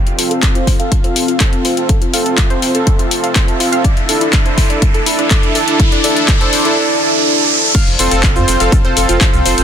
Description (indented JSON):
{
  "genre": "progressive house",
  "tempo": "123 BPM",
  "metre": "4/4",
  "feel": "straight",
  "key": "F major",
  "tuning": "A4 = 440 Hz",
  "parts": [
    { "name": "warm analog pad", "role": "sustained chords", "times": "0.0-9.6 s", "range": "C4 to C6", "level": "-19 LUFS", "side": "left 1 dB", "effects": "chorus, sidechain pumping" },
    { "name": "riser", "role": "sound effects", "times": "0.0-7.7 s", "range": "none", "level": "-20 LUFS", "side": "right 1 dB", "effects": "none" },
    { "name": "house drum kit", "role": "drums", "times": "0.1-9.6 s", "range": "crash cymbal, handclaps, hi-hat, shaker", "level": "-18 LUFS", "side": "left 3 dB", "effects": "none" },
    { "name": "analog pluck", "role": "arpeggios", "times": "0.2-9.5 s", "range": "D4 to F5", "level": "-22 LUFS", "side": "equal", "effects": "chorus, cassette tape, sidechain pumping, digital delay" },
    { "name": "soft supersaw", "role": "stabs", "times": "0.2-9.6 s", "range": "C4 to C5", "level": "-18 LUFS", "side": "right 2 dB", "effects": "sidechain pumping, low-pass filter, digital delay" },
    { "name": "electronic kick drum", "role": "drums", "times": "0.4-9.3 s", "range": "none", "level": "-13 LUFS", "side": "equal", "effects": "none" },
    { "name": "round analog bass", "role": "bass", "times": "7.9-9.6 s", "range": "F1 to F2", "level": "-17 LUFS", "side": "equal", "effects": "sidechain pumping" }
  ],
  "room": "light reverb",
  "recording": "dense, heavily limited modern master",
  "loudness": "-10 LUFS",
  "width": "side -8 dB against mid",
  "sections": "0.0-7.7 A section; 7.7-9.6 B section",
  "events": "build-up 0.0-7.7; riser 0.0-7.7; filter sweep on synth pluck 0.0-7.7; filter sweep on supersaw synth 0.0-7.7; drop 7.7-9.6",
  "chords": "0.0 F; 3.8 Dsus2; 7.7 F"
}